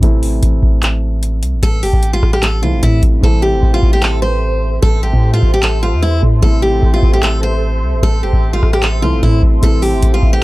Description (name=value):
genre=hip hop, trap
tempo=150 BPM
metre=4/4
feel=half-time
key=A minor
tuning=A4 = 436 Hz
part: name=dark baby grand piano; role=accompaniment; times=0.0-10.4 s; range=C3 to E4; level=-23 LUFS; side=right 1 dB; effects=none
part: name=long sustained 808-style bass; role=bass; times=0.0-10.4 s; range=G1 to A2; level=-15 LUFS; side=equal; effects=none
part: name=booming analog drum machine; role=drums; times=0.0-10.4 s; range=handclaps, hi-hat, kick drum, rim click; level=-13 LUFS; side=equal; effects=none
part: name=picked steel-string acoustic guitar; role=melody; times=1.6-10.4 s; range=E4 to C5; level=-18 LUFS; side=equal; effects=none
part: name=hollow soft pad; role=sustained chords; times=3.2-10.4 s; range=A4 to C6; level=-24 LUFS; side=right 1 dB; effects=ensemble chorus
room=little or no reverb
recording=dark, warm production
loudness=-11 LUFS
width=side -19 dB against mid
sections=0.0-10.4 A section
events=break 0.0-1.6; hi-hats muted 3.2-9.6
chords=0.0 Am